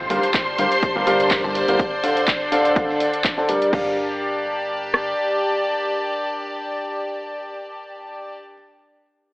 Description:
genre	piano house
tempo	124 BPM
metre	4/4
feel	swing 54% on 16ths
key	G minor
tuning	A4 = 443 Hz
part	string machine, violins	sustained chords	0.0-3.7 s	C5 to C6	-23 LUFS	equal	ensemble chorus, sidechain pumping
part	impact	sound effects	0.0-1.8 s	none	-47 LUFS	equal	none
part	rich studio string section	texture	0.0-8.4 s	D4 to A5	-24 LUFS	equal	sidechain pumping
part	warm grand piano	riff	0.1-8.5 s	D3 to A5	-23 LUFS	equal	sidechain pumping, low-pass filter, tape echo
part	plucky analog bass	bass	0.1-5.1 s	G1	-32 LUFS	equal	sidechain pumping
part	breakbeat sampler-style drum kit	drums	0.1-3.6 s	hi-hat, snare drum	-36 LUFS	equal	none
part	punchy analog drum machine	drums	0.1-3.8 s	crash cymbal, handclaps, hi-hat	-26 LUFS	equal	none
part	punchy analog drum machine	drums	0.3-5.1 s	kick drum, rim click	-23 LUFS	equal	none
room	wet plate reverb, RT60 1.7 s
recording	dreamy mix soaked in reverb, AM radio sound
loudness	-18 LUFS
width	side -22 dB against mid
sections	0.0-3.7 A section; 3.7-7.6 B section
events	impact 0.0-1.8; filter sweep on grand piano 0.0-3.7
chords	0.0 Gm7; 1.8 Dm7; 3.7 Gm7

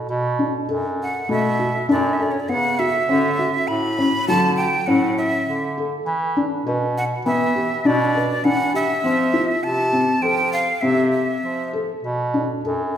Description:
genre	contemporary instrumental, chamber music in an uneven meter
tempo	100 BPM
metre	5/4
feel	straight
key	unclear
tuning	A4 = 436 Hz
part	felt-muted upright piano	arpeggios	0.0-13.0 s	F#3 to B4	-22 LUFS	left 2 dB	none
part	clear bass clarinet	bass	0.0-13.0 s	F#2 to F3	-23 LUFS	right 1 dB	none
part	breathy bright jazz flute	melody	1.0-11.7 s	C#5 to B5	-22 LUFS	right 1 dB	none
room	wet recital hall reverb, RT60 1.8 s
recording	recorded in a church or concert hall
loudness	-18 LUFS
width	side -9 dB against mid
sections	0.1-13.0 A section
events	none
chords	0.1 Bm7; 3.1 Dmaj9; 6.1 Em7; 9.0 Fmaj7; 12.0 Bm7

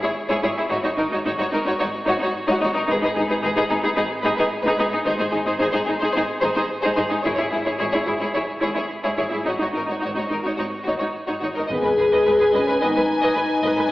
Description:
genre	cinematic, epic orchestral film score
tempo	110 BPM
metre	4/4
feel	straight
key	G# minor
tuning	A4 = 441 Hz
part	warm symphonic violin section	melody	0.0-13.9 s	G#4 to G#5	-26 LUFS	left 1 dB	none
part	warm studio violin section	second line	0.0-13.9 s	D#4 to D#5	-26 LUFS	left 1 dB	none
part	rich studio viola section	accompaniment	0.0-13.8 s	D#4 to B4	-24 LUFS	equal	none
part	warm symphonic cello section	bass	0.0-13.8 s	G#2	-33 LUFS	right 1 dB	none
part	rich symphonic double bass section	bass	0.4-13.7 s	G#1	-35 LUFS	right 1 dB	none
part	taiko ensemble	drums	2.9-3.9, 7.2-8.3, 11.7-12.8 s	none	-41 LUFS	equal	none
part	clear trombone section	sustained chords	11.7-13.9 s	D#3 to B3	-32 LUFS	right 1 dB	none
part	mellow French horn section	sustained chords	11.7-13.9 s	C#4 to G#4	-19 LUFS	left 2 dB	none
part	timpani	percussion	11.7-12.5 s	G#2	-38 LUFS	left 1 dB	none
room	wet scoring stage reverb, RT60 1.6 s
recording	heard from further back in the room, AM radio sound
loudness	-19 LUFS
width	side -17 dB against mid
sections	0.0-11.7 A section; 11.7-13.9 B section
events	build-up 0.0-11.7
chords	0.0 C#m/G#; 0.7 D#m7/G#; 7.3 C#m/G#; 9.5 D#m7/G#; 11.7 G#m

